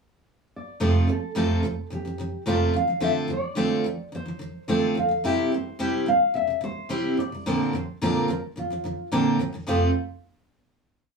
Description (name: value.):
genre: acoustic pop.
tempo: 108 BPM.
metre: 4/4.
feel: straight.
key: F major.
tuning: A4 = 440 Hz.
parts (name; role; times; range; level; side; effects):
nylon-string guitar; melody; 0.6-9.9 s; F4 to F5; -27 LUFS; left 1 dB; none.
picked steel-string acoustic guitar; accompaniment; 0.8-9.9 s; F2 to G4; -24 LUFS; right 1 dB; none.
room: wet studio ambience, RT60 0.5 s.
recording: band playing live in one room.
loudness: -22 LUFS.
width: side -4 dB against mid.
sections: 0.0-0.8 pickup bar; 0.8-9.7 verse; 9.7-11.2 final chord.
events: none.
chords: 0.0 N.C.; 0.8 F; 2.7 Dm7; 5.2 C; 7.5 Bbadd9; 9.7 F.